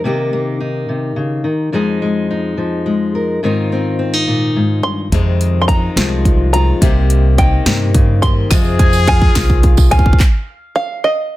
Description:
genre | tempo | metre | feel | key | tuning
indie folk with a building arrangement | 71 BPM (dotted quarters) | 6/8 | straight | F minor | A4 = 440 Hz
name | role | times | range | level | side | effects
fingerpicked steel-string acoustic guitar | accompaniment | 0.0-8.5 s | F2 to Bb4 | -17 LUFS | left 2 dB | none
open-back banjo | melody | 4.8-11.4 s | Eb5 to C6 | -17 LUFS | right 1 dB | none
picked steel-string acoustic guitar | accompaniment | 5.1-10.2 s | F2 to G4 | -21 LUFS | left 7 dB | none
upright bass | bass | 5.1-10.1 s | C2 to G2 | -14 LUFS | equal | none
house drum kit | drums | 5.1-10.3 s | handclaps, hi-hat, kick drum, snare drum | -13 LUFS | equal | none
warm trumpet | second line | 8.5-10.2 s | Ab4 | -20 LUFS | left 5 dB | none
mandolin | arpeggios | 8.5-10.2 s | F5 to Eb6 | -27 LUFS | right 7 dB | tape echo
group handclap | percussion | 8.5-9.5 s | none | -24 LUFS | left 10 dB | none
tambourine | percussion | 8.5-10.0 s | none | -28 LUFS | right 14 dB | none
room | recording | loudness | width
light reverb, small room ambience | dense, heavily limited modern master | -12 LUFS | side -16 dB against mid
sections
0.0-5.1 A section; 5.1-11.4 B section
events
build-up 5.1-11.4; drum fill 5.1-10.2; stop 10.2-11.4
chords
0.0 Cm7; 1.7 Fm7; 3.4 Ab6; 5.1 Fm7; 6.8 Cm7; 8.5 Fm7; 10.2 N.C.

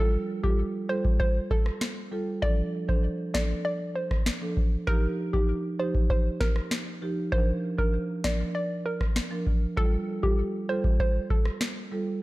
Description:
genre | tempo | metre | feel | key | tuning
dancehall | 98 BPM | 4/4 | straight | unclear | A4 = 439 Hz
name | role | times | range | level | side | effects
hollow square pluck | melody | 0.0-11.4 s | G4 to D5 | -32 LUFS | equal | chorus, ping-pong delay
marimba with medium mallets | accompaniment | 0.0-12.1 s | F3 to Bb4 | -31 LUFS | right 2 dB | none
booming analog drum machine | drums | 0.4-11.8 s | kick drum, rim click, snare drum | -25 LUFS | equal | none
room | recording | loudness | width
digital ambience | dark, warm production | -25 LUFS | side -19 dB against mid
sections
0.0-12.2 A section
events
none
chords
0.0 Fadd9; 2.4 Dm/F; 4.9 Ebadd9; 7.3 Bb; 9.8 Fadd9

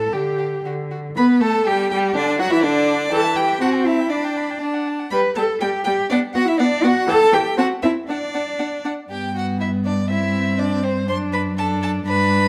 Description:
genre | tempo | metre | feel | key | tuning
quick classical-period movement for string quartet | 121 BPM | 2/4 | rubato | G major | A4 = 442 Hz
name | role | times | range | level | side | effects
rich violin | melody | 0.0-12.5 s | D4 to C6 | -30 LUFS | equal | none
clear viola | accompaniment | 0.0-12.5 s | D3 to A4 | -24 LUFS | equal | none
clear cello | bass | 0.0-12.5 s | F#2 to B4 | -23 LUFS | equal | none
clear violin | second line | 0.1-12.5 s | C4 to B5 | -27 LUFS | equal | none
room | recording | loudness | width
moderate recital hall reverb, RT60 1.7 s | none | -20 LUFS | mono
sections
0.0-1.2 A section; 1.2-9.1 B section; 9.1-12.5 C section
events
none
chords
0.1 G5/D; 0.6 D; 1.2 G; 2.2 Dadd9; 3.1 Em; 3.6 Am7/C; 4.1 G/D; 5.1 G; 6.1 Bm; 7.1 Em; 7.6 Am; 8.1 D; 9.1 G; 10.1 C/G; 11.1 D/F#

